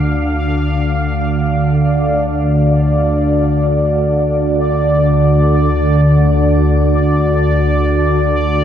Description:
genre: dark ambient drone.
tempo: free time.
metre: none.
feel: none.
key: D minor.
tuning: A4 = 440 Hz.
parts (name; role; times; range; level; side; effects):
organ-like drone; drone; 0.0-8.6 s; D2 to D3; -12 LUFS; equal; ensemble chorus, built-in reverb.
bubbling stepped-filter texture; texture; 0.0-8.6 s; D5 to F5; -18 LUFS; equal; chorus, built-in reverb, shimmer reverb.
room: wet huge ambient reverb, RT60 8.1 s.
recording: dark, warm production.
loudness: -12 LUFS.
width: side -9 dB against mid.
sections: 0.0-1.8 A section; 1.8-8.6 B section.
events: none.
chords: 0.0 Dm; 1.8 N.C..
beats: free time.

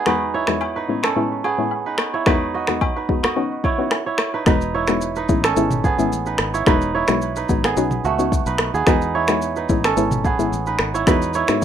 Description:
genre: afrobeats.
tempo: 109 BPM.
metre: 4/4.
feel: straight.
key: E major.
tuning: A4 = 441 Hz.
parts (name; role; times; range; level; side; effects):
kora; riff; 0.0-11.6 s; A3 to D#5; -21 LUFS; right 6 dB; digital delay.
soft round pluck; accompaniment; 0.1-11.6 s; E2 to F#4; -23 LUFS; left 4 dB; chorus, plate reverb.
afro-pop drum kit; drums; 0.1-11.6 s; finger snaps, kick drum, rim click, shaker, toms; -20 LUFS; left 1 dB; overdrive.
agogo bells and woodblock; percussion; 0.1-4.3 s; none; -29 LUFS; left 8 dB; none.
fingered electric bass; bass; 4.5-11.6 s; E1 to G#2; -27 LUFS; left 1 dB; none.
room: light reverb.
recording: rough home demo mix.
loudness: -17 LUFS.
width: side -9 dB against mid.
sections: 0.0-4.5 A section; 4.5-11.6 B section.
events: none.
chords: 0.1 Emaj7; 0.9 Amaj7; 2.3 Emaj7; 3.4 Badd9; 4.5 Emaj7; 5.3 Amaj7; 6.7 Emaj7; 7.8 Badd9; 8.9 Emaj7; 9.7 Amaj7; 11.1 Emaj7.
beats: | 0.06 0.61 1.16 1.71 | 2.26 2.81 3.37 3.92 | 4.47 5.02 5.57 6.12 | 6.67 7.22 7.77 8.32 | 8.87 9.42 9.97 10.52 | 11.07 11.62.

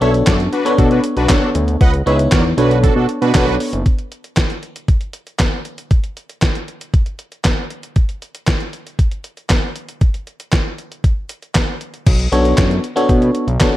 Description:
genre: early-eighties boogie funk.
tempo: 117 BPM.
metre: 4/4.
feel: straight.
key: B minor.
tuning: A4 = 439 Hz.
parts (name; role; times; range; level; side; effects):
analog synth brass; second line; 0.0-3.5 s; D4 to F#5; -20 LUFS; right 2 dB; chorus.
FM electric piano; accompaniment; 0.0-3.9, 12.3-13.8 s; B3 to C#5; -17 LUFS; left 1 dB; chorus.
fat analog bass; bass; 0.0-3.8, 12.1-13.6 s; F#1 to B2; -16 LUFS; equal; none.
detuned 8-bit digital drum machine; drums; 0.0-13.7 s; crash cymbal, handclaps, hi-hat, kick drum, snare drum; -15 LUFS; equal; gated reverb.
room: digital ambience.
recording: none.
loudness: -14 LUFS.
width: side -15 dB against mid.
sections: 0.0-3.9 A section; 3.9-12.1 B section; 12.1-13.8 A section.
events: none.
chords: 0.0 Bm9; 1.8 C#m9; 2.6 Bm9; 3.9 N.C.; 12.1 Bm9.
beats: 0.27 0.78 1.29 | 1.81 2.32 2.83 3.35 | 3.86 4.37 4.88 5.40 | 5.91 6.42 6.94 7.45 | 7.96 8.47 8.99 9.50 | 10.01 10.53 11.04 11.55 | 12.06 12.58 13.09 13.60.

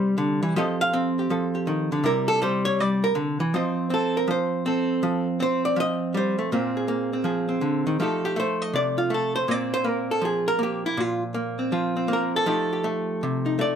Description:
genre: solo jazz.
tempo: 161 BPM.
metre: 4/4.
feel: swing 64% on 8ths.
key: F mixolydian.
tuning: A4 = 440 Hz.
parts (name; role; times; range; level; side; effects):
archtop guitar, miked and amplified; solo; 0.0-13.8 s; Bb2 to F5; -22 LUFS; equal; none.
room: moderate studio reverb, RT60 0.7 s.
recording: none.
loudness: -22 LUFS.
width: side -8 dB against mid.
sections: 0.0-3.5 A section; 3.5-13.8 A section.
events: hollow-body jazz guitar solo 0.0-3.5, 3.5-13.8.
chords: 0.0 Cadd9; 0.5 F9; 2.0 Cadd9; 3.5 F7; 6.5 Bb9; 8.0 F9; 9.5 Bbsus2; 12.5 F9.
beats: 0.17 | 0.54 0.91 1.29 1.66 | 2.03 2.40 2.77 3.15 | 3.52 3.89 4.27 4.64 | 5.01 5.38 5.76 6.13 | 6.50 6.88 7.25 7.62 | 8.00 8.37 8.74 9.11 | 9.49 9.86 10.23 10.60 | 10.97 11.35 11.72 12.09 | 12.46 12.83 13.21 13.58.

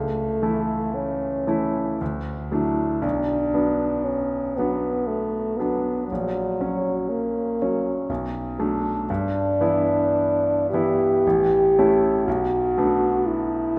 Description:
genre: classical, romantic duo for French horn and grand piano.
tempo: 52-61 BPM.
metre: 3/4.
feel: rubato.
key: unclear.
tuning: A4 = 439 Hz.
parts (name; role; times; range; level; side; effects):
mellow French horn; melody; 0.0-13.8 s; F#3 to G4; -24 LUFS; equal; none.
bright grand piano; accompaniment; 0.0-13.8 s; A1 to E4; -27 LUFS; equal; none.
room: wet concert hall reverb, RT60 2.0 s.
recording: none.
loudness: -23 LUFS.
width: mono.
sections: 0.0-13.8 A section.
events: none.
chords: 0.0 A/C#; 2.0 D; 3.0 Bm; 6.1 F#/A#; 8.1 Bm7; 9.1 Em7/G; 11.2 A; 12.3 Bm7.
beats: 0.94 2.00 | 3.04 4.06 5.09 | 6.10 7.10 8.09 | 9.09 10.16 11.24 | 12.26 13.26.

